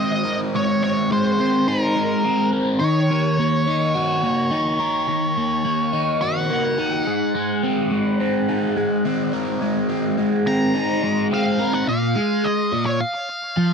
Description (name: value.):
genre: rock.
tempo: 106 BPM.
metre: 4/4.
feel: straight.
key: unclear.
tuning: A4 = 440 Hz.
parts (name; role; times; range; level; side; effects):
octave-fuzz lead guitar; melody; 0.0-13.7 s; Bb4 to Bb5; -24 LUFS; equal; wah, distortion, tape echo.
overdriven semi-hollow guitar; riff; 0.0-13.7 s; Bb2 to Bb4; -19 LUFS; equal; phaser.
room: light reverb.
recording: dry, close 1970s-style studio recording.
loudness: -18 LUFS.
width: side -6 dB against mid.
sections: 0.0-11.9 A section; 11.9-13.7 B section.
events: none.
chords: 0.0 Abadd9; 2.8 Ebm; 7.1 Abadd9; 11.9 Bb5.